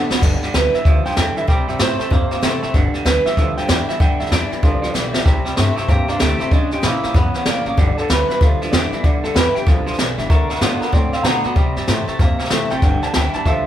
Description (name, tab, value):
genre	rockabilly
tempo	190 BPM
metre	4/4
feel	swing 63% on 8ths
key	G mixolydian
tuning	A4 = 440 Hz
part	electric guitar through a small old amp	melody	0.0-13.7 s	D4 to C6	-22 LUFS	right 1 dB	none
part	picked steel-string acoustic guitar	accompaniment	0.0-13.7 s	G2 to G4	-27 LUFS	left 4 dB	none
part	twangy electric guitar	riff	0.0-13.6 s	G2 to C4	-23 LUFS	right 1 dB	none
part	upright bass	bass	0.0-13.6 s	G1 to B2	-22 LUFS	equal	none
part	jazz brush drum kit	drums	0.1-13.6 s	crash cymbal, hi-hat, kick drum, snare drum	-17 LUFS	equal	none
room	light reverb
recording	band playing live in one room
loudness	-15 LUFS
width	side -11 dB against mid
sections	0.2-13.7 A section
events	drum fill 0.0, 4.9-5.3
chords	0.2 G6; 1.5 C6; 2.7 G6; 5.3 C6; 6.5 C#dim7; 7.8 G6; 10.3 D6; 11.6 C6; 12.8 G6